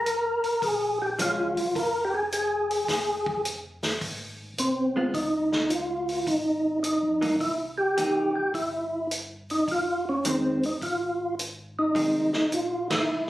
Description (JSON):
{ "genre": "soul jazz organ trio", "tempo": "106 BPM", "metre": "4/4", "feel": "swing 67% on 8ths", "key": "F minor", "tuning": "A4 = 440 Hz", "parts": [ { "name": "percussive tonewheel organ", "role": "melody", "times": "0.0-13.3 s", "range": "C4 to Bb4", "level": "-25 LUFS", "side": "equal", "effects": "chorus vibrato, fast rotary speaker" }, { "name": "mellow tonewheel organ", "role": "bass", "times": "0.0-13.3 s", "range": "F1 to G2", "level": "-45 LUFS", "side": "equal", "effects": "overdrive, chorus vibrato, slow rotary speaker" }, { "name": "vintage drum kit", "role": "drums", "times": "0.1-13.0 s", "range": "hi-hat, kick drum, ride cymbal, snare drum", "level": "-32 LUFS", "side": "equal", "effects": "none" }, { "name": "vintage hollow-body jazz guitar", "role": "accompaniment", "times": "1.2-1.5, 5.0-13.1 s", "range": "Eb3 to F4", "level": "-29 LUFS", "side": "right 1 dB", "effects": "none" } ], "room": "moderate studio reverb, RT60 0.6 s", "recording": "recorded on a phone in the room, studio reverb", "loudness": "-24 LUFS", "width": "side -15 dB against mid", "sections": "0.0-13.3 A section", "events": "band accent 12.8; drum fill 13.1", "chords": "0.0 Bbm7; 2.9 Fm; 5.1 Db; 7.4 C7#9; 9.7 Fm7" }